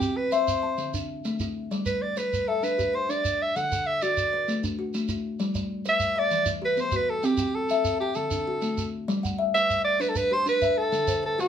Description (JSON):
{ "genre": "southern african traditional, mbira-style interlocking cycle", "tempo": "130 BPM (dotted quarters)", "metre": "12/8", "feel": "straight", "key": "G major", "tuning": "A4 = 440 Hz", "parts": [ { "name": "clear soprano saxophone", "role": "melody", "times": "0.0-11.5 s", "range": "F#4 to F#5", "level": "-24 LUFS", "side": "right 1 dB", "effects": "none" }, { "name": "kalimba", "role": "arpeggios", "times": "0.0-11.5 s", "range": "D3 to A5", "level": "-28 LUFS", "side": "left 3 dB", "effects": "none" }, { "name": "shekere", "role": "percussion", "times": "0.0-11.5 s", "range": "none", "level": "-34 LUFS", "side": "right 3 dB", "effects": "none" } ], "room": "wet studio ambience, RT60 0.5 s", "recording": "band playing live in one room", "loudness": "-23 LUFS", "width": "side -8 dB against mid", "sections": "0.0-9.1 A section; 9.1-11.5 A section", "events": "none", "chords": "0.0 C; 0.8 D5; 1.7 G; 3.5 D; 5.4 G; 6.3 Em; 7.2 C; 8.2 D; 9.1 G; 10.9 D" }